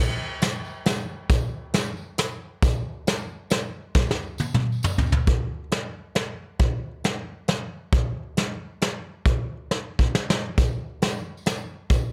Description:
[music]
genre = rock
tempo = 136 BPM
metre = 3/4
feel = straight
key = none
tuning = none
[part]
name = tambourine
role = percussion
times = 0.1-5.1, 10.6-12.0 s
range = none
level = -43 LUFS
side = equal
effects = none
[part]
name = soft brush drum kit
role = drums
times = 0.4-12.0 s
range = hi-hat, kick drum, snare drum, toms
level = -25 LUFS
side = equal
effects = none
[sound]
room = light reverb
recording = none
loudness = -26 LUFS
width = mono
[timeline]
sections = 0.0-5.3 A section; 5.3-12.1 B section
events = drum fill 4.0-5.3, 9.7-10.6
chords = none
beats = 0.42 0.86 | 1.30 1.75 2.19 | 2.63 3.07 3.51 | 3.95 4.39 4.83 | 5.28 5.72 6.16 | 6.60 7.05 7.49 | 7.93 8.37 8.82 | 9.26 9.70 10.14 | 10.59 11.03 11.47 | 11.91

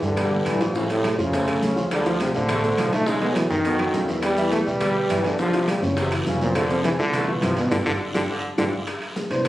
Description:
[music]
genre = latin, salsa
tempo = 207 BPM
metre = 4/4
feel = straight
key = C major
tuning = A4 = 440 Hz
[part]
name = bright trombone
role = melody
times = 0.0-8.7 s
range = G2 to A3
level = -23 LUFS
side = equal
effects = none
[part]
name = dark grand piano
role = accompaniment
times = 0.0-9.5 s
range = B2 to F5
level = -26 LUFS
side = equal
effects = none
[part]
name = upright bass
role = bass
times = 0.0-9.5 s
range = F1 to A2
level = -30 LUFS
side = equal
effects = none
[part]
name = bongos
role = percussion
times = 0.0-9.5 s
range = none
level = -32 LUFS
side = left 3 dB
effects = none
[part]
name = congas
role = percussion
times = 0.0-9.5 s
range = none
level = -31 LUFS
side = right 1 dB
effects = none
[part]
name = guiro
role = percussion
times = 0.0-9.5 s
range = none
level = -38 LUFS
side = right 1 dB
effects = none
[part]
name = maracas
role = percussion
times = 0.0-9.5 s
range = none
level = -44 LUFS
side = left 2 dB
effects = none
[part]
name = mellow trombone section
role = second line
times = 0.2-8.7 s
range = B2 to A3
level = -29 LUFS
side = equal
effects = none
[part]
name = claves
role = percussion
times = 0.2-9.5 s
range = none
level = -39 LUFS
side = left 1 dB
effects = none
[part]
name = timbales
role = percussion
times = 0.2-9.5 s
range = none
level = -34 LUFS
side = right 2 dB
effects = none
[sound]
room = moderate small room reverb, RT60 0.5 s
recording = recorded on a phone in the room, studio reverb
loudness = -20 LUFS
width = side -15 dB against mid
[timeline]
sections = 0.0-8.9 A section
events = drum fill 3.4-4.2; band accent 7.7-8.9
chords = 0.0 Em7; 0.8 Aaug; 1.9 Dm7; 3.1 B7; 4.2 Em7; 5.4 G5; 6.0 F#5; 6.6 Fmaj7(no3); 7.7 G5; 8.9 Cmaj7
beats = 0.17 0.46 | 0.75 1.04 1.33 1.62 | 1.91 2.20 2.49 2.78 | 3.07 3.36 3.65 3.94 | 4.23 4.52 4.81 5.10 | 5.39 5.68 5.97 6.26 | 6.55 6.84 7.13 7.42 | 7.71 8.00 8.29 8.58 | 8.88 9.16 9.46

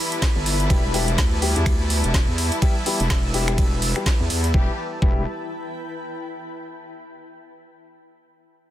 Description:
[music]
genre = bass house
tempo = 125 BPM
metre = 4/4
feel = swing 58% on 16ths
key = E minor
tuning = A4 = 440 Hz
[part]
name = rich chamber string section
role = sustained chords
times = 0.0-4.8 s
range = E3 to G4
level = -31 LUFS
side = left 2 dB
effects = sidechain pumping
[part]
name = granular cloud pad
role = texture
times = 0.0-6.4 s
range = E4 to E6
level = -31 LUFS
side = left 1 dB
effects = built-in reverb, sidechain pumping
[part]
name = garage drum kit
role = drums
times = 0.1-4.5 s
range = finger snaps, hi-hat, ride cymbal, snare drum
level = -26 LUFS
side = right 2 dB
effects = overdrive
[part]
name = electronic kick drum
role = drums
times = 0.2-5.1 s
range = none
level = -20 LUFS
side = equal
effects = overdrive
[part]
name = wobble bass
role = bass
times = 0.4-5.2 s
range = E1 to E2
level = -23 LUFS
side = equal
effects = chorus, overdrive, sidechain pumping
[part]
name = dark baby grand piano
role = stabs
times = 0.7-5.2 s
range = G3 to G4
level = -29 LUFS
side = left 4 dB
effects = sidechain pumping, digital delay
[sound]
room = little or no reverb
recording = dense, heavily limited modern master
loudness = -18 LUFS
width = side -13 dB against mid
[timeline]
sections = 0.0-4.5 A section; 4.5-6.5 B section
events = drop 0.0-4.5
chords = 0.0 Em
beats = 0.22 | 0.70 1.18 1.66 2.14 | 2.62 3.10 3.58 4.06 | 4.54 5.02 5.50 5.98

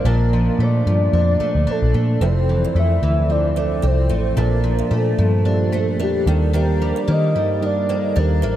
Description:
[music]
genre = indie pop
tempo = 111 BPM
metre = 4/4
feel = swing 55% on 16ths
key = unclear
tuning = A4 = 440 Hz
[part]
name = soft octave-layered synth lead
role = melody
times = 0.0-8.6 s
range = G4 to E5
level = -23 LUFS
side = left 1 dB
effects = tremolo, wide subtle chorus, tape echo
[part]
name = picked steel-string acoustic guitar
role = accompaniment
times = 0.0-8.6 s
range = F2 to D4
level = -24 LUFS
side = left 1 dB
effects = analog chorus, warbly pitch drift
[part]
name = tine electric piano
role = accompaniment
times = 0.0-8.6 s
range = F3 to A5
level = -26 LUFS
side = right 6 dB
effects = overdrive, cassette tape
[part]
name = vintage muted picked electric bass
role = bass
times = 0.0-8.6 s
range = F1 to Eb3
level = -18 LUFS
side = equal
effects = none
[part]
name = kalimba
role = second line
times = 2.2-8.6 s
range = F4 to D5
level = -27 LUFS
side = right 5 dB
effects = ensemble chorus, tape echo
[sound]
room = moderate huge ambient reverb, RT60 6.7 s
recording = dreamy mix soaked in reverb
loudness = -16 LUFS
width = side -12 dB against mid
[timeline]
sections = 0.0-8.6 A section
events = none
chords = 0.1 Bbmaj7; 2.2 Fmaj7; 4.4 Bbmaj7; 6.3 Ebmaj7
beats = | 0.05 0.59 1.13 1.67 | 2.21 2.75 3.29 3.84 | 4.38 4.92 5.46 6.00 | 6.54 7.08 7.62 8.16

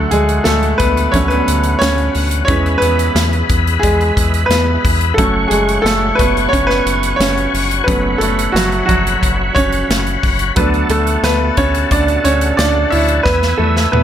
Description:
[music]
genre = piano-driven pop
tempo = 89 BPM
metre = 4/4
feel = straight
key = F# minor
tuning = A4 = 440 Hz
[part]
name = warm grand piano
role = accompaniment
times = 0.0-14.0 s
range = D3 to E5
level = -15 LUFS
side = right 1 dB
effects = none
[part]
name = bright tonewheel organ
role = sustained chords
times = 0.0-14.0 s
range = F#4 to E6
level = -20 LUFS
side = left 3 dB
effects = chorus vibrato, slow rotary speaker
[part]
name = round analog bass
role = bass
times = 0.0-14.0 s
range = F#1 to E2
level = -18 LUFS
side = left 1 dB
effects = none
[part]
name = natural country drum kit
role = drums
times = 0.1-14.0 s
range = hi-hat, kick drum, snare drum, toms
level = -19 LUFS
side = equal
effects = none
[sound]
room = light reverb, studio reverb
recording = none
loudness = -12 LUFS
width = side -10 dB against mid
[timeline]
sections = 0.0-14.0 A section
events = grand piano solo 0.0-14.0; drum fill 13.3-14.0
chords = 0.0 D; 2.5 E; 5.2 F#m; 10.6 D; 13.3 E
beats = 0.47 1.14 1.82 | 2.49 3.17 3.84 4.51 | 5.19 5.86 6.53 7.21 | 7.88 8.55 9.22 9.90 | 10.57 11.24 11.91 12.59 | 13.26 13.93

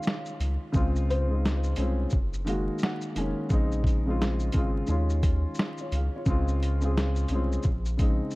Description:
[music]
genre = lo-fi hip hop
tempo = 87 BPM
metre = 4/4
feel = swing 61% on 16ths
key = unclear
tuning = A4 = 439 Hz
[part]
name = dark upright piano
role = melody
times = 0.0-1.6 s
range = C5 to F5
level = -36 LUFS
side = left 2 dB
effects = analog delay
[part]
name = felt-muted upright piano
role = accompaniment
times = 0.0-8.4 s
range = Db3 to Ab5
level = -30 LUFS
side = left 1 dB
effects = none
[part]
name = dusty soul sampler-style drum kit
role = drums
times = 0.0-8.4 s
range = hi-hat, kick drum, shaker, snare drum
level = -28 LUFS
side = equal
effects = none
[part]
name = round analog bass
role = bass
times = 0.4-8.2 s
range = F1 to Eb2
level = -27 LUFS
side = equal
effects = none
[sound]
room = little or no reverb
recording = dark, warm production, vinyl crackle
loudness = -24 LUFS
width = side -21 dB against mid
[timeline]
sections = 0.0-8.4 A section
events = none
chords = 0.0 Eb9sus4; 0.7 Dbmaj7; 2.1 Gb69; 3.5 Bbm11; 4.9 Eb9sus4; 6.3 Dbmaj7; 7.6 Bbm11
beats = 0.05 | 0.74 1.43 2.12 2.81 | 3.50 4.19 4.88 5.57 | 6.26 6.95 7.64 8.33

